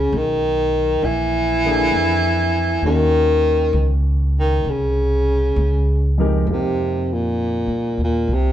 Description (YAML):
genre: jazz ballad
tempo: 66 BPM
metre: 4/4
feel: swing 68% on 8ths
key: unclear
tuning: A4 = 440 Hz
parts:
  - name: warm baritone saxophone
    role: melody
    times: 0.0-8.5 s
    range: Bb2 to E3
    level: -18 LUFS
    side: equal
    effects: plate reverb
  - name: upright bass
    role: bass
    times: 0.0-8.5 s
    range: A#1 to G2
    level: -20 LUFS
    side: equal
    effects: none
  - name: warm grand piano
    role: accompaniment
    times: 1.6-8.5 s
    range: E#2 to A#4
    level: -25 LUFS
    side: left 1 dB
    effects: none
room: wet club reverb, RT60 0.9 s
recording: heard from further back in the room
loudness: -16 LUFS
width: side -11 dB against mid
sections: 0.0-6.5 A section; 6.5-8.5 B section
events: none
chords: 0.0 N.C.; 1.0 A#7; 2.8 D#m7; 4.6 C5; 6.5 F9sus4